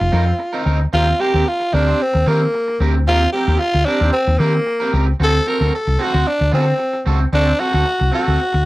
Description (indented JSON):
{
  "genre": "disco",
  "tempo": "112 BPM",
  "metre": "4/4",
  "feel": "straight",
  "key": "unclear",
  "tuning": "A4 = 440 Hz",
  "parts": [
    { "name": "raspy tenor saxophone", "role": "melody", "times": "0.0-8.7 s", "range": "Bb3 to Bb4", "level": "-18 LUFS", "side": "equal", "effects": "none" },
    { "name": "electric guitar at the edge of break-up", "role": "accompaniment", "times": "0.0-8.6 s", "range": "C4 to C5", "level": "-22 LUFS", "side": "right 3 dB", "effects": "lush chorus" },
    { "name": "hollow-body short-scale fingered electric bass", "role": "bass", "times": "0.0-8.6 s", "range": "F1 to Eb3", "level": "-16 LUFS", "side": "equal", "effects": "none" }
  ],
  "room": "light reverb",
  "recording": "dry, close 1970s-style studio recording",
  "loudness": "-14 LUFS",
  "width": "side -18 dB against mid",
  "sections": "0.0-8.7 A section",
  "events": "none",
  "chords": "0.0 F7sus4; 0.9 Eb6; 5.2 D7"
}